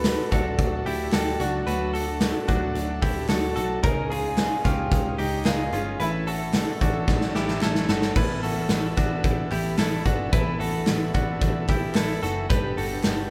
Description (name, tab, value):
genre	jangly indie pop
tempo	111 BPM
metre	4/4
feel	straight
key	unclear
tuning	A4 = 441 Hz
part	electric guitar through a small old amp	melody	0.0-7.0 s	E4 to B4	-34 LUFS	equal	none
part	combo organ	accompaniment	0.0-13.3 s	G#3 to A4	-38 LUFS	equal	none
part	fingerpicked steel-string acoustic guitar	accompaniment	0.0-13.3 s	A2 to A4	-36 LUFS	equal	none
part	direct-recorded clean electric guitar	arpeggios	0.0-13.3 s	C#4 to B4	-32 LUFS	equal	none
part	vintage muted picked electric bass	bass	0.0-13.3 s	F#1 to D2	-32 LUFS	equal	none
part	big rock drum kit	drums	0.0-13.2 s	crash cymbal, hi-hat, kick drum, snare drum	-27 LUFS	equal	none
part	group handclap	percussion	0.0-13.2 s	none	-45 LUFS	equal	none
room	moderate large studio reverb, RT60 1.2 s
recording	band playing live in one room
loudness	-24 LUFS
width	mono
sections	0.0-8.2 A section; 8.2-13.3 B section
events	drum fill 7.1-8.2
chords	0.0 D; 3.8 C#sus2; 6.0 A; 8.2 Gadd9